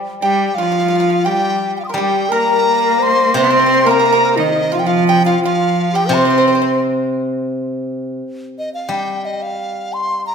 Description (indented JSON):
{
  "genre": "chinese traditional, Chinese chamber ensemble",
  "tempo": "87 BPM",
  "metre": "2/4",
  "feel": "rubato",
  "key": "C yu mode",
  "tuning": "A4 = 440 Hz",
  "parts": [
    { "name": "steel-string zither", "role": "accompaniment", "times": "0.0-10.3 s", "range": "C3 to G3", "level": "-22 LUFS", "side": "left 1 dB", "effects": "none" },
    { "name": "mellow hollow large dizi", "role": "melody", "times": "0.2-10.3 s", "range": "Eb5 to Eb6", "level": "-17 LUFS", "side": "equal", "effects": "none" },
    { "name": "bright reedy low xiao", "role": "second line", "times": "0.2-6.8 s", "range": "Eb4 to C5", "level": "-19 LUFS", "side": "left 7 dB", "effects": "none" },
    { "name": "pipa", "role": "second line", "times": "0.2-6.7 s", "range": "Eb4 to C5", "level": "-21 LUFS", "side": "right 5 dB", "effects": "none" },
    { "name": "rich cello", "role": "second line", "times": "0.2-6.8 s", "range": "Eb3 to C4", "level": "-18 LUFS", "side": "right 5 dB", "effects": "none" }
  ],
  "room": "wet recital hall reverb, RT60 1.7 s",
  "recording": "none",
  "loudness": "-13 LUFS",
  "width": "side -6 dB against mid",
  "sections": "0.0-7.5 A section; 7.5-10.3 B section",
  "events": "none",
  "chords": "none"
}